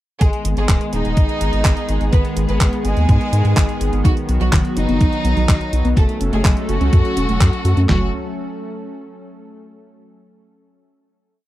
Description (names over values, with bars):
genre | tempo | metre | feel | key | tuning
italo disco | 125 BPM | 4/4 | straight | F# dorian | A4 = 439 Hz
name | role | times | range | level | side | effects
rich chamber violin section | melody | 0.2-8.1 s | G#3 to B4 | -25 LUFS | equal | tape echo
lush unison pad | sustained chords | 0.2-8.1 s | D#3 to A4 | -24 LUFS | equal | chorus
round analog bass | bass | 0.2-8.1 s | D#1 to G#2 | -18 LUFS | equal | none
detuned 8-bit digital drum machine | drums | 0.2-8.0 s | handclaps, kick drum, snare drum, toms | -16 LUFS | equal | none
house drum kit | drums | 0.2-7.9 s | handclaps, hi-hat | -24 LUFS | right 1 dB | none
soft round pluck | arpeggios | 4.0-8.1 s | D#3 to F#4 | -24 LUFS | right 1 dB | chorus, cassette tape, tape echo
room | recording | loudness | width
little or no reverb | dry, close 1970s-style studio recording | -14 LUFS | side -15 dB against mid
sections
0.2-7.9 chorus; 7.9-9.8 final chord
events
band accent 7.4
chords
0.2 G#m; 4.0 B; 6.0 F#m